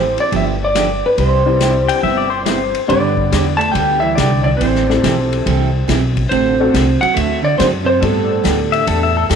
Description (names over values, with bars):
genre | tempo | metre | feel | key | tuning
country, western swing | 140 BPM | 4/4 | swing 66% on 8ths | unclear | A4 = 440 Hz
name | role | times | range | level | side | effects
clean lap steel guitar | melody | 0.0-9.3 s | A4 to A5 | -17 LUFS | equal | tape echo
honky-tonk upright piano | accompaniment | 0.0-9.2 s | G3 to B4 | -23 LUFS | left 10 dB | none
picked steel-string acoustic guitar | accompaniment | 0.0-9.4 s | C3 to A4 | -22 LUFS | right 9 dB | none
upright bass | bass | 0.0-9.4 s | G1 to G2 | -19 LUFS | equal | none
vintage drum kit | drums | 0.2-9.4 s | hi-hat, kick drum, ride cymbal, snare drum | -23 LUFS | left 7 dB | none
pedal steel guitar | second line | 1.9-2.8, 8.7-9.4 s | G4 to G5 | -18 LUFS | left 8 dB | none
vintage hollow-body jazz guitar | second line | 2.9-9.2 s | A2 to A3 | -20 LUFS | right 7 dB | none
room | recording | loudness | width
moderate echo chamber reverb, RT60 1.6 s, small room reverb | 1960s-style stereo with parts hard left and right | -12 LUFS | side -7 dB against mid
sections
0.0-2.9 A section; 2.9-9.4 B section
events
none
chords
0.3 G7; 1.2 Cmaj7; 2.9 G; 4.6 Am7; 6.3 D7/A; 8.0 Gadd9